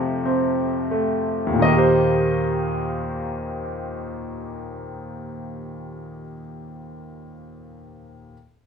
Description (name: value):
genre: classical, lyrical solo piano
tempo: 27-33 BPM (dotted quarters)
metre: 6/8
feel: rubato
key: Eb lydian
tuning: A4 = 440 Hz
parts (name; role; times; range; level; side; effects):
- bright grand piano; solo; 0.0-8.3 s; Eb2 to F5; -22 LUFS; equal; none
room: moderate studio reverb, RT60 0.6 s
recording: minimal, uncompressed stereo recording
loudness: -20 LUFS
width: side -6 dB against mid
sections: 0.0-1.6 A section; 1.6-5.8 B section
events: slowing down 0.0-1.6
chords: 0.0 F; 1.6 Eb6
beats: | 1.62 3.75